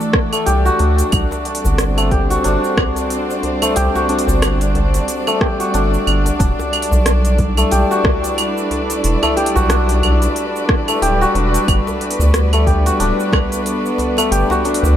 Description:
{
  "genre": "organic downtempo",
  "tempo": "91 BPM",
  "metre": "4/4",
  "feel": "swing 58% on 16ths",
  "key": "unclear",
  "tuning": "A4 = 440 Hz",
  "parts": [
    { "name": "warm chamber string section", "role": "sustained chords", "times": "0.0-15.0 s", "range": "E3 to D5", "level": "-21 LUFS", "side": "right 1 dB", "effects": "sidechain pumping" },
    { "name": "santur", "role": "arpeggios", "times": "0.0-15.0 s", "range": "A3 to G4", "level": "-19 LUFS", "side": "left 2 dB", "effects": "ping-pong delay" },
    { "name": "organic electronic drum kit", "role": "drums", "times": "0.0-15.0 s", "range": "cabasa, claves, hi-hat, rim click", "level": "-21 LUFS", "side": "right 1 dB", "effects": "overdrive" },
    { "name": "electronic kick drum", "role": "drums", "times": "0.1-13.5 s", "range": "none", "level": "-18 LUFS", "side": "equal", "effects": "overdrive" },
    { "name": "round analog bass", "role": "bass", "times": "0.5-15.0 s", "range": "D1 to D2", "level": "-16 LUFS", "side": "equal", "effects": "none" },
    { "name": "djembe", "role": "percussion", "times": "1.3-14.9 s", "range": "none", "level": "-25 LUFS", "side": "left 1 dB", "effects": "none" }
  ],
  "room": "light reverb, digital ambience",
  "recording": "none",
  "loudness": "-13 LUFS",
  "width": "side -10 dB against mid",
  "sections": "0.0-15.0 A section",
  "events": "none",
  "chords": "0.0 Dsus2; 1.1 Csus2; 6.4 Em7"
}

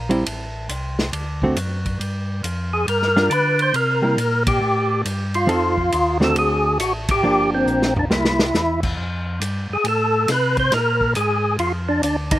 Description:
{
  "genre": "soul jazz organ trio",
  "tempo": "138 BPM",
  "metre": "4/4",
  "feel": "swing 66% on 8ths",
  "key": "unclear",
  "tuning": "A4 = 440 Hz",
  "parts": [
    { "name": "tonewheel organ", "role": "bass", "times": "0.0-12.4 s", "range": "G1 to D3", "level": "-24 LUFS", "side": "equal", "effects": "overdrive" },
    { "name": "hollow-body jazz guitar", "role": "accompaniment", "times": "0.1-8.4 s", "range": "D3 to Bb4", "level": "-21 LUFS", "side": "right 1 dB", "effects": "none" },
    { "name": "warm soul drum kit", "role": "drums", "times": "0.1-12.4 s", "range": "crash cymbal, hi-hat, kick drum, ride cymbal, snare drum, toms", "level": "-26 LUFS", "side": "equal", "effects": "none" },
    { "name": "percussive tonewheel organ", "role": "melody", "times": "2.7-12.4 s", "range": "C4 to C5", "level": "-19 LUFS", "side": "equal", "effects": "slow rotary speaker, overdrive, chorus vibrato, slapback echo" }
  ],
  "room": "little or no reverb",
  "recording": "none",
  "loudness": "-17 LUFS",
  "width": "side -14 dB against mid",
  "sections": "0.0-9.0 A section; 9.0-12.4 A section",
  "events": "band accent 4.4, 7.0; drum fill 7.7-8.5",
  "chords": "0.2 Am; 1.1 D7; 2.0 Gm7; 3.7 C7(no3); 5.5 F7; 6.4 D7; 7.2 Gm7; 8.1 C7; 9.0 F; 10.7 Bb7"
}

